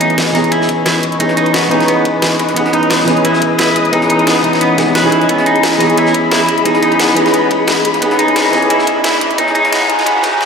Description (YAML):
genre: liquid drum and bass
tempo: 176 BPM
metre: 4/4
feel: swing 54% on 16ths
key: C# minor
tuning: A4 = 440 Hz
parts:
  - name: warm baby grand piano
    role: accompaniment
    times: 0.0-10.5 s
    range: E3 to D#5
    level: -14 LUFS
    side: equal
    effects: wide subtle chorus, ping-pong delay
  - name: muted studio string section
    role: sustained chords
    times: 0.0-10.4 s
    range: G#4 to D#6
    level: -18 LUFS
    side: left 3 dB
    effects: sidechain pumping, low-pass filter
  - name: semi-hollow electric guitar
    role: arpeggios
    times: 0.0-10.4 s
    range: B3 to B4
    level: -16 LUFS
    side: equal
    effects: lush chorus, ping-pong delay
  - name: crunchy breakbeat drum kit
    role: drums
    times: 0.0-10.3 s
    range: ride cymbal, snare drum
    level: -24 LUFS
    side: equal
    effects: none
  - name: pop drum kit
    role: drums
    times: 0.0-10.5 s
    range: hi-hat, snare drum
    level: -19 LUFS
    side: equal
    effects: overdrive, high-pass filter on hats, high-pass filter on snare, high-pass filter on room
  - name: sub bass with octave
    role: bass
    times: 0.3-10.3 s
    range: none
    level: barely audible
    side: none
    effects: none
  - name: electronic kick drum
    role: drums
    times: 0.7-10.3 s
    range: none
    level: -27 LUFS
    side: equal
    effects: none
  - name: riser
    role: sound effects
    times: 6.5-10.5 s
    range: none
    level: -25 LUFS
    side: right 1 dB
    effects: none
room: wet lush hall reverb, RT60 2.1 s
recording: dreamy mix soaked in reverb, high-pass filter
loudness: -10 LUFS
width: side -6 dB against mid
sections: 0.0-10.5 A section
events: build-up 0.0-10.5; filter sweep on string section 0.0-10.5; riser 6.5-10.5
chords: 0.0 C#m9; 5.1 F#13sus4